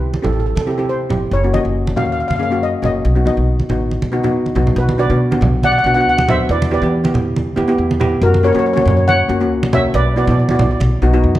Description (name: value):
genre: calypso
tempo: 139 BPM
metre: 4/4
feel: straight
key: unclear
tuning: A4 = 438 Hz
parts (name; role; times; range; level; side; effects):
- steel pan; melody; 0.0-10.8 s; F#4 to F#5; -18 LUFS; equal; none
- steel pan; accompaniment; 0.0-11.3 s; A#3 to A4; -18 LUFS; equal; none
- upright bass; bass; 0.0-11.4 s; F#1 to F#3; -18 LUFS; equal; none
- congas; percussion; 0.1-11.4 s; none; -21 LUFS; right 2 dB; none
room: moderate recital hall reverb, RT60 1.4 s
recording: none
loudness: -13 LUFS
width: side -14 dB against mid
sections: 0.0-4.8 A section; 4.8-11.4 B section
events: drum fill 4.5-4.8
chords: 0.0 C; 1.3 F#; 3.0 B; 4.8 Bm; 6.5 Em7; 8.2 F#; 9.9 Bsus4; 10.8 B